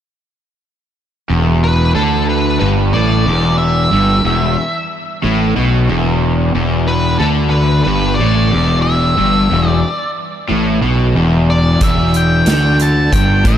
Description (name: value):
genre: blues rock power trio and southern rock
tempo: 91 BPM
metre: 4/4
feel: straight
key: E minor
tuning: A4 = 440 Hz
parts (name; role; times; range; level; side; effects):
- overdriven semi-hollow guitar; riff; 1.3-13.6 s; E2 to D3; -14 LUFS; equal; none
- fuzz fingered electric bass; bass; 1.3-13.6 s; E1 to D2; -16 LUFS; equal; overdrive
- octave-fuzz lead guitar; melody; 1.6-13.6 s; A4 to A5; -18 LUFS; equal; distortion
- big rock drum kit; drums; 11.8-13.6 s; hi-hat, kick drum, snare drum; -16 LUFS; equal; none
room: moderate lush hall reverb, RT60 3.2 s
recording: big arena sound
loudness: -11 LUFS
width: side -10 dB against mid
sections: 1.3-13.6 A section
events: none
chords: 1.3 Em